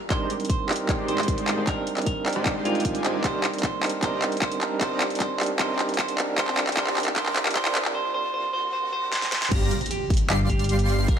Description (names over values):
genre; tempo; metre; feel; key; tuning
future bass; 153 BPM; 4/4; half-time; C minor; A4 = 440 Hz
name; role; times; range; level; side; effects
semi-hollow electric guitar; melody; 0.0-11.2 s; F4 to C5; -30 LUFS; right 3 dB; sidechain pumping, digital delay
riser, swell and impact; sound effects; 0.1-11.1 s; none; -38 LUFS; equal; none
overdriven tine electric piano; accompaniment; 0.1-9.5 s; G3 to D5; -29 LUFS; right 2 dB; medium tremolo, sidechain pumping
dense compressed supersaw; riff; 0.1-11.1 s; G3 to C6; -31 LUFS; equal; sidechain pumping, low-pass filter
fat analog bass; bass; 0.1-11.1 s; G1 to Ab2; -30 LUFS; equal; none
electronic kick drum; drums; 0.1-11.2 s; none; -26 LUFS; equal; studio reverb
pop drum kit; drums; 0.1-11.2 s; crash cymbal, handclaps, hi-hat, snare drum; -26 LUFS; equal; studio reverb
airy dreamy lead; arpeggios; 9.5-11.1 s; Bb6 to C7; -34 LUFS; equal; chorus, sidechain pumping
room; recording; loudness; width
light reverb; high-pass filter; -22 LUFS; side -8 dB against mid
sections
0.0-9.5 A section; 9.5-11.2 B section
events
build-up 0.0-9.5; drum fill 0.0-7.9, 9.1-9.5; filter sweep on supersaw synth 0.0-9.5; filter sweep 0.0-9.5; break 7.9-9.5; swell 8.7-9.5; drop 9.5-11.2; impact 9.5-11.1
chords
0.0 Abmaj9#11; 3.2 Cm9; 6.4 Bbadd9; 9.5 Gm7